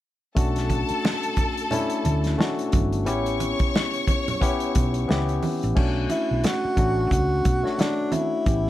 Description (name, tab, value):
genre	lush 1970s-style soul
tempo	89 BPM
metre	4/4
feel	swing 58% on 16ths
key	B minor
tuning	A4 = 440 Hz
part	clear studio string section	second line	0.4-5.4 s	A4 to C#6	-29 LUFS	left 2 dB	none
part	barky tine electric piano	accompaniment	0.4-8.7 s	A3 to C#5	-26 LUFS	left 2 dB	overdrive
part	hollow-body short-scale fingered electric bass	bass	0.4-8.7 s	G1 to D2	-25 LUFS	equal	none
part	warm soul drum kit	drums	0.4-8.7 s	crash cymbal, hi-hat, kick drum, snare drum	-25 LUFS	equal	none
part	congas	percussion	0.4-8.6 s	none	-32 LUFS	right 4 dB	none
part	breathy tenor saxophone	melody	6.1-8.7 s	D4 to F#4	-25 LUFS	right 1 dB	none
room	studio reverb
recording	none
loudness	-21 LUFS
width	side -14 dB against mid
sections	0.4-5.8 A section; 5.8-8.7 B section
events	none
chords	0.4 Bm7; 3.1 A7; 5.8 Bm7